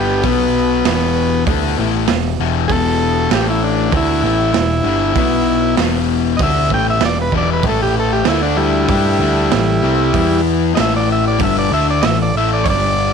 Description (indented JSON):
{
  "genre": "garage rock duo or trio",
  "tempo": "97 BPM",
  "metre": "4/4",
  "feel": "straight",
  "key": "E minor",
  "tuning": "A4 = 439 Hz",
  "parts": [
    { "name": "overdriven combo organ", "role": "melody", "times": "0.0-13.1 s", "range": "G3 to G5", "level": "-18 LUFS", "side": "right 2 dB", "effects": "none" },
    { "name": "combo organ", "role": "sustained chords", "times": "0.0-13.1 s", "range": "A3 to D5", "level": "-26 LUFS", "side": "right 16 dB", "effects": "none" },
    { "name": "fuzz guitar", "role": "riff", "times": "0.0-13.1 s", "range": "E2 to G4", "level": "-18 LUFS", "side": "left 14 dB", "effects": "distortion" },
    { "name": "growling picked electric bass", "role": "bass", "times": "0.0-13.1 s", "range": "E1 to G2", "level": "-20 LUFS", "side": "right 2 dB", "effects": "overdrive" },
    { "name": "raw garage drum kit", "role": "drums", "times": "0.2-12.8 s", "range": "hi-hat, kick drum, snare drum", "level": "-21 LUFS", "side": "right 8 dB", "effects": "none" }
  ],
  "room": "studio reverb",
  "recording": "1960s-style stereo with parts hard left and right",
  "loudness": "-13 LUFS",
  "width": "side -6 dB against mid",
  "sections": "0.0-13.1 A section",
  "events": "none",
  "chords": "0.2 B5; 0.9 Em; 3.3 A5; 3.9 Em; 5.2 B5; 5.8 Em; 7.6 A5; 8.3 D5; 8.9 A5; 10.1 E5; 10.8 A5",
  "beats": "| 0.24 0.86 1.47 2.09 | 2.70 3.32 3.93 4.55 | 5.17 5.78 6.40 7.02 | 7.64 8.27 8.89 9.52 | 10.14 10.77 11.40 12.03 | 12.66"
}